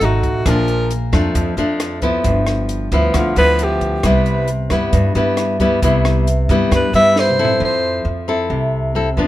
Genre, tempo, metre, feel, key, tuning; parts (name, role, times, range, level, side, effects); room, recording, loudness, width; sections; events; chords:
bossa nova; 134 BPM; 4/4; straight; C major; A4 = 440 Hz
breathy alto saxophone; melody; 0.0-8.0 s; F4 to E5; -17 LUFS; equal; plate reverb
nylon-string guitar; accompaniment; 0.0-9.3 s; F2 to A4; -17 LUFS; left 2 dB
upright bass; bass; 0.0-9.3 s; G1 to G2; -19 LUFS; right 1 dB
compact cocktail drum kit; drums; 0.0-7.6 s; hi-hat, kick drum, rim click, snare drum, toms; -22 LUFS; equal
light reverb; close, detailed microphones; -14 LUFS; side -14 dB against mid
0.0-7.6 A section; 7.6-9.3 A section
alto saxophone solo 0.0-9.3; drum fill 7.2-7.6
0.5 Bbmaj7; 2.2 G6; 4.0 Cmaj7; 7.6 Fmaj7